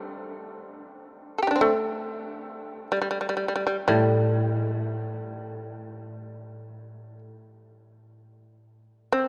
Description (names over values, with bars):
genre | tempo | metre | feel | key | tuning
japanese traditional, Japanese chamber music | free time | none | none | unclear | A4 = 441 Hz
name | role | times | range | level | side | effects
shamisen | melody | 0.0-9.3 s | G3 to A4 | -29 LUFS | equal | none
koto | accompaniment | 3.9-7.3 s | A2 | -29 LUFS | equal | none
room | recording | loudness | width
wet cathedral reverb, RT60 7.2 s | dark, warm production | -26 LUFS | mono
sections
0.0-9.3 A section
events
none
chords
none